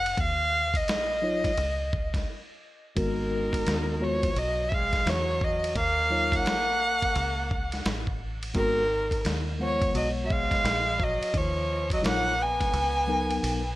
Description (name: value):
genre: hip hop, jazz-hop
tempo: 86 BPM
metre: 4/4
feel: swing 64% on 16ths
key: G# dorian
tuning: A4 = 435 Hz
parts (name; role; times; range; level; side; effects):
- dark violin; melody; 0.0-13.8 s; A#4 to G#5; -27 LUFS; equal; tape echo
- deep dub fingered electric bass; bass; 0.0-13.8 s; F#1 to E2; -32 LUFS; equal; none
- dusty soul sampler-style drum kit; drums; 0.1-13.6 s; hi-hat, kick drum, ride cymbal, snare drum; -31 LUFS; equal; none
- mellow tine electric piano; accompaniment; 1.2-13.6 s; F#3 to F#5; -30 LUFS; left 2 dB; medium stereo tremolo
- breathy tenor saxophone; second line; 3.0-13.8 s; D#3 to B3; -35 LUFS; right 2 dB; tape echo
room: light reverb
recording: lossy compression artefacts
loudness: -24 LUFS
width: side -16 dB against mid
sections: 0.0-13.8 A section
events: break 2.3-3.0; drum fill 12.7-13.8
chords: 0.2 D#7sus2; 3.0 G#m9; 5.8 D#m9; 8.6 G#m9; 11.3 D#m9; 12.7 C#13sus4